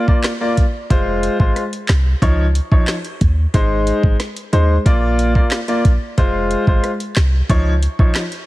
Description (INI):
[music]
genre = dancehall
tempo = 91 BPM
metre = 4/4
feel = straight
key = F minor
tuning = A4 = 440 Hz
[part]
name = clear concert grand piano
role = accompaniment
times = 0.0-8.2 s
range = F3 to D5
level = -19 LUFS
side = left 1 dB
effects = sidechain pumping
[part]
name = island pop drum kit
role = drums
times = 0.1-8.5 s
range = handclaps, hi-hat, kick drum, rim click, snare drum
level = -17 LUFS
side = equal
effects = vintage 12-bit sampler grit
[part]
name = clean 808-style bass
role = bass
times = 0.9-8.1 s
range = F1 to Eb2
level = -16 LUFS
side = equal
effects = none
[sound]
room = digital ambience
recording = heavily compressed radio sound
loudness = -14 LUFS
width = side -17 dB against mid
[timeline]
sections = 0.0-8.5 A section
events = none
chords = 0.0 Bb; 0.9 Fm; 2.2 Dbadd9; 3.5 Ab; 4.9 Bb; 6.2 Fm; 7.5 Dbadd9